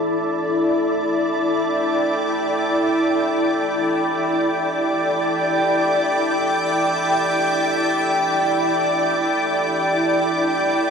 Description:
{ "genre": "ambient", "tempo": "free time", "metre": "none", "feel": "none", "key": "unclear", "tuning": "A4 = 439 Hz", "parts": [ { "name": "soft additive organ-like pad", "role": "solo", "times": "0.0-10.9 s", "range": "E4 to G5", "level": "-17 LUFS", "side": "equal", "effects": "ensemble chorus, built-in reverb, ping-pong delay" } ], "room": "wet lush hall reverb, RT60 2.8 s", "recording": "none", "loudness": "-17 LUFS", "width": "side -6 dB against mid", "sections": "0.0-10.9 A section", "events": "none", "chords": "0.0 Em7", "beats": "free time" }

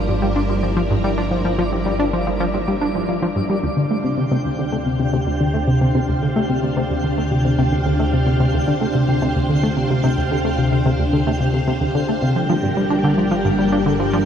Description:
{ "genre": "ambient, sequencer-driven space music", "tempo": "110 BPM", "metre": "4/4", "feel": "straight", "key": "D minor", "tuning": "A4 = 440 Hz", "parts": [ { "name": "string machine, full ensemble", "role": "sustained chords", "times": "0.0-14.3 s", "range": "G3 to F5", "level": "-23 LUFS", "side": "left 1 dB", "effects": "ensemble chorus" }, { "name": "fat analog bass", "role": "bass", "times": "0.0-14.3 s", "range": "G1 to D2", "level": "-26 LUFS", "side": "equal", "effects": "none" }, { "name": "twinkling granular texture", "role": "texture", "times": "0.0-14.3 s", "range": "D4 to G5", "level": "-27 LUFS", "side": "equal", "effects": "built-in reverb, shimmer reverb" }, { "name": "tight sequenced synth", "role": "riff", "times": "0.1-14.2 s", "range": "D2 to D4", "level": "-19 LUFS", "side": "equal", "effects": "chorus, analog delay" } ], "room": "wet cathedral reverb, RT60 6.6 s", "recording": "in a vast, echoing space", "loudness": "-16 LUFS", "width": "side -8 dB against mid", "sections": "0.0-14.3 A section", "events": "fade-in on string machine 0.0-14.3", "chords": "0.0 Gm; 3.6 Dm7; 12.4 Gm", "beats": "0.36 0.91 | 1.45 2.00 2.54 3.09 | 3.63 4.18 4.72 5.27 | 5.81 6.36 6.91 7.45 | 8.00 8.54 9.09 9.63 | 10.18 10.72 11.27 11.81 | 12.36 12.90 13.45 14.00" }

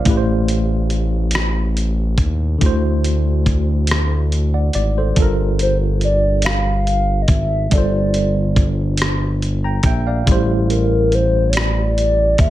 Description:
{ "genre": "slow six-eight R&B", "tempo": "47 BPM (dotted quarters)", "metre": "6/8", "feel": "straight", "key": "G dorian", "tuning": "A4 = 440 Hz", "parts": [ { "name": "tine electric piano", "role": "accompaniment", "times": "0.0-12.5 s", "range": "A2 to Bb5", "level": "-22 LUFS", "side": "right 1 dB", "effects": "overdrive, fast stereo tremolo" }, { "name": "smooth synth bass", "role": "bass", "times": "0.1-12.5 s", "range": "G1 to Eb2", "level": "-18 LUFS", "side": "equal", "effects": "none" }, { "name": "dusty soul sampler-style drum kit", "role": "drums", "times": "0.1-12.5 s", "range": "hi-hat, kick drum, rim click", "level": "-18 LUFS", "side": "equal", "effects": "none" }, { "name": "hollow clarinet-like synth lead", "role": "melody", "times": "5.6-12.5 s", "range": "Bb4 to F5", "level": "-19 LUFS", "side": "equal", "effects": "chorus" } ], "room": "little or no reverb", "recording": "none", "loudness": "-15 LUFS", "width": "side -14 dB against mid", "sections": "0.0-12.5 A section", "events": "none", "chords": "0.1 Am7; 2.6 D9; 5.2 Gm7; 10.3 Am7", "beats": "| 0.06 1.33 | 2.61 3.89 | 5.16 6.44 | 7.72 8.99 | 10.27 11.55" }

